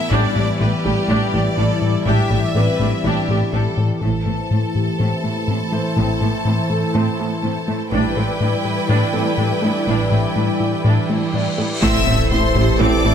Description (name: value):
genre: cinematic, hybrid orchestral and electronic film score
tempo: 123 BPM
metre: 4/4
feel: straight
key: A minor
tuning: A4 = 440 Hz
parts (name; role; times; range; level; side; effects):
- bright symphonic violin section; melody; 0.0-3.5, 11.8-13.1 s; B4 to E6; -25 LUFS; left 3 dB; low-pass filter
- clear symphonic violin section; second line; 0.0-13.1 s; E4 to A5; -26 LUFS; left 2 dB; none
- brassy analog pad; sustained chords; 0.0-13.1 s; E3 to D5; -23 LUFS; equal; chorus, low-pass filter
- dark grand piano; texture; 0.0-13.1 s; G3 to D5; -30 LUFS; left 1 dB; digital delay
- clear symphonic viola section; accompaniment; 0.1-13.1 s; A3 to A4; -26 LUFS; right 1 dB; low-pass filter
- plucky analog bass; riff; 0.1-13.1 s; A2 to A3; -21 LUFS; left 2 dB; low-pass filter
- clear symphonic cello section; bass; 0.1-13.1 s; A2; -25 LUFS; right 3 dB; none
- rich symphonic double bass section; bass; 0.1-13.1 s; A1; -25 LUFS; right 3 dB; none
- cymbal swell and impact; sound effects; 11.2-13.1 s; none; -26 LUFS; equal; none
- dark French horn section; sustained chords; 11.8-13.1 s; C4 to E4; -28 LUFS; left 3 dB; none
- dark trombone section; sustained chords; 11.8-13.1 s; E3 to A3; -25 LUFS; right 7 dB; low-pass filter
- punchy sub bass; bass; 11.8-13.1 s; A1; -22 LUFS; equal; none
- warm tuba; bass; 11.8-13.1 s; A1; -25 LUFS; right 6 dB; none
room: moderate scoring stage reverb, RT60 1.6 s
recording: none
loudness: -16 LUFS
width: side -8 dB against mid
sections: 0.0-4.0 A section; 4.0-11.8 B section; 11.8-13.1 A section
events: filter sweep 4.0-11.8; cymbal swell 11.2-11.8; impact 11.8-13.1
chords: 0.1 Em7/A; 4.0 Am; 7.9 Em7/A; 11.8 Am